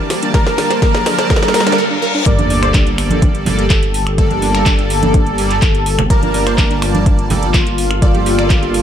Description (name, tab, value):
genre	progressive house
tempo	125 BPM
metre	4/4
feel	straight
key	G minor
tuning	A4 = 441 Hz
part	warm analog pad	sustained chords	0.0-8.8 s	D3 to A5	-25 LUFS	left 1 dB	chorus, sidechain pumping
part	wide unison pluck	arpeggios	0.0-8.7 s	D4 to D5	-23 LUFS	equal	cassette tape, sidechain pumping, digital delay
part	soft supersaw	stabs	0.0-8.8 s	G3 to A5	-20 LUFS	right 2 dB	phaser, sidechain pumping, digital delay
part	riser, reverse cymbal and sub drop	sound effects	0.0-4.2 s	none	-23 LUFS	left 1 dB	none
part	house drum kit	drums	0.1-8.8 s	finger snaps, handclaps, hi-hat, snare drum	-20 LUFS	equal	none
part	wide unison lead	melody	0.3-8.8 s	F4 to D5	-20 LUFS	left 1 dB	wide subtle chorus, sidechain pumping, dub echo
part	electronic kick drum	drums	0.3-8.6 s	none	-13 LUFS	equal	none
part	dark detuned saw bass	bass	2.3-8.8 s	G1	-19 LUFS	equal	sidechain pumping
part	congas	percussion	2.4-8.2 s	none	-22 LUFS	right 3 dB	sidechain pumping on perc
room	light reverb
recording	none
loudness	-11 LUFS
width	side -9 dB against mid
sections	0.0-2.3 A section; 2.3-8.8 B section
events	build-up 0.0-2.3; drum fill 0.0-1.8; riser 0.0-1.8; filter sweep on synth pluck 0.0-2.3; reverse cymbal 1.3-2.3; break 1.8-2.3; drop 2.3-8.8; impact 2.3-4.2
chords	0.0 Gmadd9